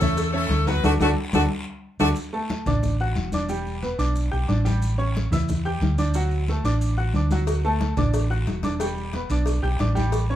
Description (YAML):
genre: latin, salsa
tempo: 181 BPM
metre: 4/4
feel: straight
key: D major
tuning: A4 = 441 Hz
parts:
  - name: brilliant horn section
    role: melody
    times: 0.0-2.1 s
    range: A3 to B4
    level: -25 LUFS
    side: left 3 dB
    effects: none
  - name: clear baby grand piano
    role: accompaniment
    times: 0.0-10.4 s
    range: F#3 to G6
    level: -27 LUFS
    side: right 1 dB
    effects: none
  - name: hollow-body short-scale fingered electric bass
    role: bass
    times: 0.0-10.4 s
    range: E1 to E2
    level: -23 LUFS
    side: equal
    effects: none
  - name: congas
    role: percussion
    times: 0.0-10.4 s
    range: none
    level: -29 LUFS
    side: left 2 dB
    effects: none
  - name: guiro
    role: percussion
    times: 0.0-10.4 s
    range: none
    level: -40 LUFS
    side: left 2 dB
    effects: none
  - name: maracas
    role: percussion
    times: 0.0-10.4 s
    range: none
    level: -43 LUFS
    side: right 1 dB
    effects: none
  - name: cowbell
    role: percussion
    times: 0.2-2.1, 7.5-10.3 s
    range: none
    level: -32 LUFS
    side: left 2 dB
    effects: none
room: moderate small room reverb, RT60 0.5 s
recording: band playing live in one room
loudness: -21 LUFS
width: side -12 dB against mid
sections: 0.0-2.2 A section; 2.2-10.4 B section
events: band accent 0.8-2.2; drum fill 1.5-2.2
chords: 0.0 A; 0.8 D; 3.5 Em7; 4.8 A7; 6.1 D; 8.8 Em7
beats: 0.18 0.51 | 0.84 1.17 1.51 1.84 | 2.17 2.50 2.83 3.16 | 3.50 3.83 4.16 4.49 | 4.82 5.15 5.49 5.82 | 6.15 6.48 6.81 7.14 | 7.48 7.81 8.14 8.47 | 8.80 9.14 9.47 9.80 | 10.13